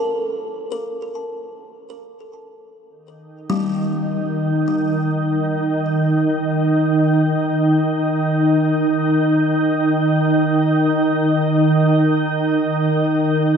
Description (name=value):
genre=ambient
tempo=free time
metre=none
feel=none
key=Eb lydian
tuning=A4 = 439 Hz
part: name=kalimba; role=arpeggios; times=0.0-6.3 s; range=G3 to A5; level=-26 LUFS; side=left 2 dB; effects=ping-pong delay
part: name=organ-like drone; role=drone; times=3.6-13.6 s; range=Eb3 to Eb4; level=-16 LUFS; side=right 1 dB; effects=ensemble chorus, built-in reverb
room=wet cathedral reverb, RT60 5.6 s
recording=none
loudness=-16 LUFS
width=side -6 dB against mid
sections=0.0-2.9 A section; 2.9-13.6 B section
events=none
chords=0.0 N.C.; 2.9 Eb